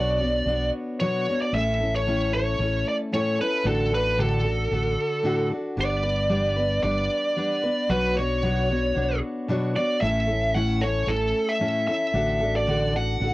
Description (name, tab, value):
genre	folk rock and heartland rock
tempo	113 BPM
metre	4/4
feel	straight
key	unclear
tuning	A4 = 440 Hz
part	biting lead guitar	melody	0.0-13.3 s	A4 to F#5	-24 LUFS	equal	overdrive, cassette tape
part	picked steel-string acoustic guitar	accompaniment	0.0-13.3 s	A2 to C#5	-26 LUFS	left 1 dB	cassette tape
part	fingered electric bass	bass	0.0-13.3 s	G1 to B1	-27 LUFS	equal	none
room	light reverb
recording	home recording on cassette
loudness	-22 LUFS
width	side -18 dB against mid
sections	0.0-1.5 A section; 1.5-13.3 A section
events	none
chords	0.0 Bmadd9; 1.5 A; 3.6 D/A; 5.8 G; 7.9 Bmadd9; 10.0 A; 12.1 D/A